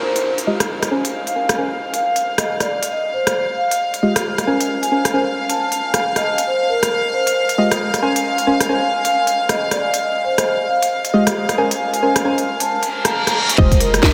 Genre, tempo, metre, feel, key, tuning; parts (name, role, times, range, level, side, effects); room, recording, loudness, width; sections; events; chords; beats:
UK garage, two-step garage; 135 BPM; 4/4; swing 60% on 16ths; F minor; A4 = 442 Hz
vibraphone with soft mallets; melody; 0.0-14.1 s; Bb4 to Bb5; -23 LUFS; equal; diffuse ambient delay
warm studio violin section; sustained chords; 0.0-14.1 s; Eb5 to F5; -26 LUFS; equal; sidechain pumping, low-pass filter
garage drum kit; drums; 0.2-14.1 s; hi-hat, rim click, snare drum; -24 LUFS; equal
deep mellow chord stab; stabs; 0.5-14.1 s; Ab3 to Ab5; -23 LUFS; equal; analog chorus, diffuse ambient delay
reverse cymbal and impact; sound effects; 12.9-14.1 s; -23 LUFS; equal
hollow knocking FM bass; bass; 13.6-14.1 s; F1; -22 LUFS; equal
electronic kick drum; drums; 13.6-14.1 s; -16 LUFS; equal
wet huge ambient reverb, RT60 7.2 s; dreamy mix soaked in reverb; -18 LUFS; mono
0.0-13.6 A section
filter sweep on synth stab 0.0-13.6; reverse cymbal 12.9-13.6; impact 13.6-14.1
0.0 Fm9; 0.9 Bbm9; 1.8 N.C.; 2.9 Fm9; 4.5 Bbm9; 5.4 N.C.; 6.5 Fm9; 8.0 Bbm9; 8.9 N.C.; 10.0 Fm9; 11.6 Bbm9; 12.5 N.C.; 13.6 Fm9
0.25 0.69 | 1.14 1.58 2.03 2.47 | 2.91 3.36 3.80 4.25 | 4.69 5.14 5.58 6.03 | 6.47 6.91 7.36 7.80 | 8.25 8.69 9.14 9.58 | 10.03 10.47 10.91 11.36 | 11.80 12.25 12.69 13.14 | 13.58 14.03